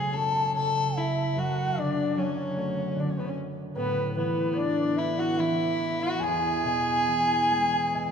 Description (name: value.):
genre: celtic folk, Celtic slow air.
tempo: 66-77 BPM.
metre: 3/4.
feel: rubato.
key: A major.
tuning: A4 = 440 Hz.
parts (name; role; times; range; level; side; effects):
bansuri; melody; 0.0-8.1 s; B4 to A5; -27 LUFS; equal; none.
warm fiddle; second line; 0.0-8.1 s; B3 to A4; -31 LUFS; left 3 dB; none.
concert harp; accompaniment; 0.0-8.1 s; E2 to E5; -29 LUFS; right 1 dB; none.
room: wet cathedral reverb, RT60 5.1 s.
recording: minimal, uncompressed stereo recording.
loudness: -24 LUFS.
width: side -7 dB against mid.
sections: 0.0-8.1 A section.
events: harp fill 7.5-8.1.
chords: 0.0 F#m; 1.4 D/F#; 3.7 Asus2; 6.2 E.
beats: 0.54 | 1.36 2.15 2.94 | 3.75 4.55 5.37 | 6.20 7.05 7.93.